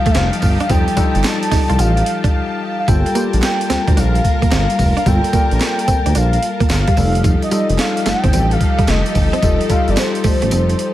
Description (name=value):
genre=R&B, new jack swing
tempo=110 BPM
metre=4/4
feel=swing 66% on 16ths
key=unclear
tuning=A4 = 440 Hz
part: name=warm velvety synth lead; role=melody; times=0.0-10.9 s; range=C5 to A5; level=-21 LUFS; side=equal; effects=chorus
part: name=tine electric piano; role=accompaniment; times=0.0-10.9 s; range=G3 to Bb4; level=-22 LUFS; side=left 5 dB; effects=lush chorus
part: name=rich studio string section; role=sustained chords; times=0.0-10.9 s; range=F3 to A5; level=-25 LUFS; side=equal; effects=none
part: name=direct-recorded clean electric guitar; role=riff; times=0.1-10.7 s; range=F3 to F4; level=-23 LUFS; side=right 5 dB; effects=wide subtle chorus
part: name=breakbeat sampler-style drum kit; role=drums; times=0.1-10.9 s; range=hi-hat, kick drum, snare drum, tambourine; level=-17 LUFS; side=equal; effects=gated reverb
part: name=smooth gliding synth bass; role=bass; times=0.2-10.7 s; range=F1 to D2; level=-17 LUFS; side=equal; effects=none
part: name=group handclap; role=percussion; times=0.2-10.1 s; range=none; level=-31 LUFS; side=right 7 dB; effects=none
room=little or no reverb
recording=none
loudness=-13 LUFS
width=side -14 dB against mid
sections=0.0-10.9 A section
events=break 2.3-2.9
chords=0.0 F9; 2.9 Gm9; 7.0 F9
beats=0.15 | 0.70 1.24 1.79 2.33 | 2.88 3.42 3.97 4.52 | 5.06 5.61 6.15 6.70 | 7.24 7.79 8.33 8.88 | 9.43 9.97 10.52